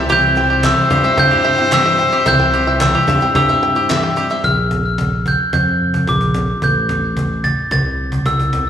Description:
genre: indie folk with a building arrangement.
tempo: 110 BPM.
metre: 4/4.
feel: straight.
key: unclear.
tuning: A4 = 443 Hz.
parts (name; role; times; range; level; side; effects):
mellow trumpet; second line; 0.0-4.1 s; C5; -20 LUFS; equal; slapback echo, digital delay.
picked twelve-string acoustic guitar; accompaniment; 0.0-4.4 s; C3 to C5; -22 LUFS; left 4 dB; none.
clear studio string section; sustained chords; 0.0-4.4 s; C3 to G4; -26 LUFS; left 2 dB; none.
bluegrass banjo; arpeggios; 0.0-4.4 s; G4 to G5; -20 LUFS; right 4 dB; slapback echo.
picked electric bass; bass; 0.0-8.7 s; A1 to G2; -19 LUFS; equal; none.
glockenspiel with soft plastic mallets; melody; 0.1-8.6 s; D6 to A6; -16 LUFS; equal; slapback echo, digital delay.
cajon; drums; 0.1-8.7 s; none; -22 LUFS; equal; slapback echo.
group handclap; percussion; 0.6-4.0 s; none; -26 LUFS; left 2 dB; none.
room: light reverb.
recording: live gig heard through the venue's PA, recital hall reverb, small room ambience.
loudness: -13 LUFS.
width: side -9 dB against mid.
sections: 0.0-4.4 A section; 4.4-8.7 B section.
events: none.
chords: 0.0 C; 4.4 Bb5; 6.6 Am7.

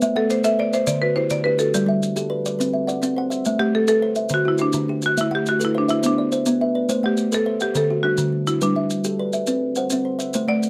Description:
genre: southern african traditional, mbira-style interlocking cycle.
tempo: 140 BPM (dotted quarters).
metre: 12/8.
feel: straight.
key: A dorian.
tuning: A4 = 440 Hz.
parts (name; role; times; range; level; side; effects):
kalimba; arpeggios; 0.0-10.7 s; D3 to F#5; -25 LUFS; equal; none.
kalimba; arpeggios; 0.0-10.7 s; D3 to F#5; -28 LUFS; equal; none.
maracas; percussion; 0.0-10.7 s; none; -34 LUFS; equal; none.
buzzing marimba with medium hard mallets; melody; 0.2-10.7 s; D4 to E5; -24 LUFS; equal; none.
room: light reverb.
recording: close, detailed microphones.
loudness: -21 LUFS.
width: mono.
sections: 0.0-6.9 A section; 6.9-10.7 B section.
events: none.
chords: 0.0 Am; 0.9 D; 1.7 G; 2.6 C; 3.5 Am; 4.3 D; 5.2 Am; 6.0 Bm; 6.9 Am; 7.8 D; 8.6 G; 9.5 C.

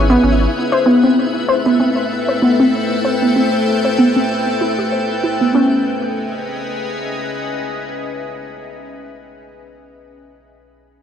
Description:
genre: IDM.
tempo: 96 BPM.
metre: 4/4.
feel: swing 56% on 16ths.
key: unclear.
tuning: A4 = 440 Hz.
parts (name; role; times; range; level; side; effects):
icy glass pad; sustained chords; 0.0-8.8 s; A3 to G5; -20 LUFS; left 2 dB; chorus, built-in reverb.
warm sub bass; bass; 0.0-0.5 s; G#1; -16 LUFS; equal; none.
flickering grainy texture; texture; 0.0-5.6 s; E4 to E5; -26 LUFS; left 2 dB; built-in reverb.
warbly dusty pluck; arpeggios; 0.1-5.8 s; B3 to C5; -15 LUFS; equal; analog chorus, tape echo.
room: moderate echo chamber reverb, RT60 2.3 s.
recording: dry, gritty hardware recording, faint mains hum.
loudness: -14 LUFS.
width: side -8 dB against mid.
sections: 0.0-5.5 A section; 5.5-8.0 B section.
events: filter sweep on synth pluck 0.0-5.5.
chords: 0.0 C#m7; 0.5 Am7; 5.5 C#m7.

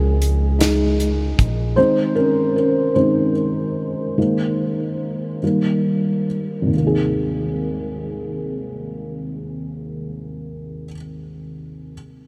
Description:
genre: six-eight pop ballad.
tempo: 45-51 BPM (dotted quarters).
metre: 6/8.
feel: straight.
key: Ab major.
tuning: A4 = 439 Hz.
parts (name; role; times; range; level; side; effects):
felt-muted upright piano; accompaniment; 0.0-11.9 s; Ab1 to C5; -22 LUFS; equal; none.
upright bass; bass; 0.0-1.8 s; Bb1 to Db2; -21 LUFS; equal; none.
natural country drum kit; drums; 0.2-1.6 s; hi-hat, kick drum, snare drum; -24 LUFS; equal; none.
room: moderate huge ambient reverb, RT60 7.3 s.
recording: dreamy mix soaked in reverb.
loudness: -20 LUFS.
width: mono.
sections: 0.0-6.7 A section; 6.7-9.4 B section.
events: felt piano solo 0.0-6.7; slowing down 1.8-6.7.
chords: 0.0 Db; 1.8 Ab; 4.2 Ebsus4; 5.4 Eb; 6.7 Abadd9.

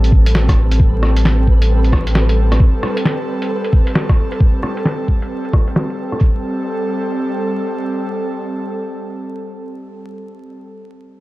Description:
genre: future garage.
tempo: 133 BPM.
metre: 4/4.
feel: swing 62% on 16ths.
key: A minor.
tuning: A4 = 441 Hz.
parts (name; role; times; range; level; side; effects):
airy breathy pad; sustained chords; 0.0-10.6 s; G3 to A4; -22 LUFS; equal; chorus, sidechain pumping.
soft dub sub bass; bass; 0.0-2.6 s; A1; -13 LUFS; equal; tube saturation.
lo-fi sampler-style drum kit; drums; 0.0-6.2 s; hi-hat, rim click, snare drum; -20 LUFS; equal; low-pass filter on hats, low-pass filter on snare, low-pass filter on room.
flickering grainy texture; texture; 0.0-6.2 s; B4; -31 LUFS; right 3 dB; built-in reverb.
electronic kick drum; drums; 0.1-6.3 s; none; -13 LUFS; equal; none.
room: light reverb.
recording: dry, gritty hardware recording, vinyl crackle.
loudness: -14 LUFS.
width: side -18 dB against mid.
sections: 0.0-6.2 A section; 6.2-9.8 B section.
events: filter sweep on drum 0.0-6.2.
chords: 0.0 Am7.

